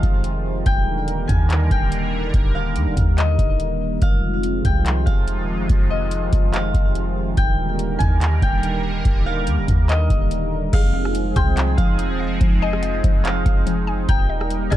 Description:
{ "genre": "hip hop, atmospheric cloud-rap", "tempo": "143 BPM", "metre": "4/4", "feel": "half-time", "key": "F dorian", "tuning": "A4 = 444 Hz", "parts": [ { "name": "Celtic harp", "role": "melody", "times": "0.0-14.8 s", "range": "Eb5 to Ab5", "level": "-27 LUFS", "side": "left 2 dB", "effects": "digital delay" }, { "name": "sweeping resonant pad", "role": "sustained chords", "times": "0.0-14.8 s", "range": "C3 to Bb4", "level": "-25 LUFS", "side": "right 1 dB", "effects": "chorus, sidechain pumping" }, { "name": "clean 808-style bass", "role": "bass", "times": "0.0-14.8 s", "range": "Eb1 to Eb2", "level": "-21 LUFS", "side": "equal", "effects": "none" }, { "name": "booming analog drum machine", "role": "drums", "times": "0.0-14.8 s", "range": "crash cymbal, handclaps, hi-hat, kick drum, rim click", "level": "-19 LUFS", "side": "equal", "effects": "none" }, { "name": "hollow square pluck", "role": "arpeggios", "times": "10.7-14.8 s", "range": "F3 to C6", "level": "-29 LUFS", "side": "left 5 dB", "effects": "chorus, digital delay" } ], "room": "little or no reverb", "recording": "dark, warm production", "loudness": "-17 LUFS", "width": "side -13 dB against mid", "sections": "0.0-10.7 A section; 10.7-14.8 B section", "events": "none", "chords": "0.0 Fm7; 0.7 Ebmaj7; 4.0 Fm7; 7.4 Ebmaj7; 10.7 Fm7; 14.1 Ebmaj7" }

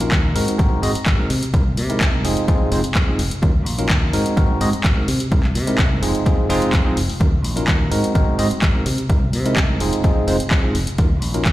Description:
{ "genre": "filtered disco house", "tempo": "127 BPM", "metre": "4/4", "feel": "straight", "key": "unclear", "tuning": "A4 = 440 Hz", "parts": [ { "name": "bell-like tine electric piano", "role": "accompaniment", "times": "0.0-11.5 s", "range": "Gb3 to Eb5", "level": "-22 LUFS", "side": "equal", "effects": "phaser, sidechain pumping, low-pass filter" }, { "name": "fingered electric bass", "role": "bass", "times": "0.0-11.5 s", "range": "F1 to C3", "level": "-22 LUFS", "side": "equal", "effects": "tube saturation, sidechain pumping, low-pass filter" }, { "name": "punchy analog drum machine", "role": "drums", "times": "0.0-11.5 s", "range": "handclaps, hi-hat", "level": "-25 LUFS", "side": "left 1 dB", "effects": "overdrive, sidechain pumping on hats" }, { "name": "electronic kick drum", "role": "drums", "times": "0.1-11.5 s", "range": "none", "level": "-18 LUFS", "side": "equal", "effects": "overdrive" } ], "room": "little or no reverb", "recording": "played on a big sound system in a bare room, stone room reverb", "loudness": "-16 LUFS", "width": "side -15 dB against mid", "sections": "0.0-11.5 A section", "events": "none", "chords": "0.4 Ab7; 1.3 C7alt; 2.2 Fm7; 3.4 Ebm7; 4.1 Ab7; 5.1 C7alt; 6.0 Fm7; 7.2 Ebm7; 7.9 Ab7; 8.9 C7alt; 9.8 Fm7; 11.0 Ebm7" }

